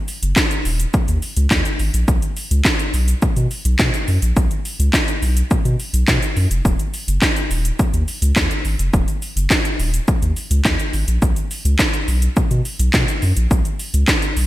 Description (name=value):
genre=dance-pop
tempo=105 BPM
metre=4/4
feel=straight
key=unclear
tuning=A4 = 440 Hz
part: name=house drum kit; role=drums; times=0.1-14.5 s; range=handclaps, hi-hat, kick drum, shaker, snare drum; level=-18 LUFS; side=equal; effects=overdrive
part: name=warm sub bass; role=bass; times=0.2-14.5 s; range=Eb1 to B2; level=-18 LUFS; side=equal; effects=sidechain pumping
room=little or no reverb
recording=none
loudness=-16 LUFS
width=side -16 dB against mid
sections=0.0-14.5 A section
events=none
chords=none